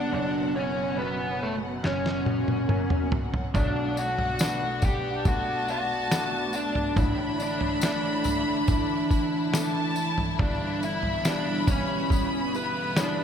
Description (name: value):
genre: pop ballad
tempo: 70 BPM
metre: 4/4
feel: straight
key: B minor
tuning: A4 = 439 Hz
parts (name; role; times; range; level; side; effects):
- lead guitar through a small cranked amp; melody; 0.0-13.2 s; A3 to G5; -28 LUFS; equal; overdrive
- clear grand piano; accompaniment; 0.0-13.2 s; F#1 to D4; -33 LUFS; equal; ensemble chorus
- warm studio string section; sustained chords; 0.0-13.2 s; B2 to F#5; -33 LUFS; equal; none
- lo-fi sampler-style drum kit; drums; 1.8-13.2 s; kick drum, snare drum, toms; -27 LUFS; equal; gated reverb
- warm studio violin section; second line; 3.5-13.2 s; F#5 to B5; -33 LUFS; left 1 dB; ping-pong delay
- tambourine; percussion; 3.5-13.2 s; none; -39 LUFS; left 7 dB; none
room: moderate lush hall reverb, RT60 2.7 s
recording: bright 1980s-style digital production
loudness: -24 LUFS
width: side -8 dB against mid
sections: 0.0-13.2 A section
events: drum fill 1.8-3.5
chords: 0.1 F#sus4; 1.8 F#; 3.5 Bm7; 7.0 Asus4; 10.4 Em/G